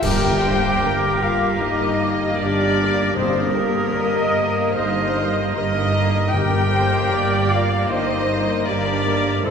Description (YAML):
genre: cinematic, emotional film score for orchestra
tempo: 77 BPM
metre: 4/4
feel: rubato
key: G minor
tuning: A4 = 441 Hz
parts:
  - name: dark chamber violin section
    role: second line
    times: 0.0-9.5 s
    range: Bb4 to G5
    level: -23 LUFS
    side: left 2 dB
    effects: none
  - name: small flute group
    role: second line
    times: 0.0-9.5 s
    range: D6 to E6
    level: -29 LUFS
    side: equal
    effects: none
  - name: warm clarinet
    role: second line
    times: 0.0-9.5 s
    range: E4 to G4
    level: -32 LUFS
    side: equal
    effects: none
  - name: warm oboe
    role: second line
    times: 0.0-9.5 s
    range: A4 to Bb4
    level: -29 LUFS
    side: right 1 dB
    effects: none
  - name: dark symphonic viola section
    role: accompaniment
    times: 0.0-9.5 s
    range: G4 to Eb5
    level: -26 LUFS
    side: right 1 dB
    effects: none
  - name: warm French horn section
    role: sustained chords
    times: 0.0-9.5 s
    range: Bb3 to G4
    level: -26 LUFS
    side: left 2 dB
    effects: none
  - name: rich chamber cello section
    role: bass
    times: 0.0-9.5 s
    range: G2 to A2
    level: -26 LUFS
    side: right 4 dB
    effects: none
  - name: warm studio double bass section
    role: bass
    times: 0.0-9.5 s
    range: G1 to A1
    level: -26 LUFS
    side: right 2 dB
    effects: none
  - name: clash cymbals and concert bass drum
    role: percussion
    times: 0.0-1.6 s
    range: none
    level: -29 LUFS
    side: equal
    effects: none
  - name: timpani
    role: percussion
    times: 0.0-7.5 s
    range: G2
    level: -30 LUFS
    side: left 1 dB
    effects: none
  - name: rich chamber violin section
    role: melody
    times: 0.4-9.5 s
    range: A3 to Bb3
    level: -30 LUFS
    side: left 3 dB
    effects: none
room: wet cathedral reverb, RT60 4.5 s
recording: recorded in a church or concert hall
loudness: -17 LUFS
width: side -6 dB against mid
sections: 0.0-9.5 A section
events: band accent 0.0-0.8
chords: 0.0 Gm; 3.2 Eb/G; 6.3 Gm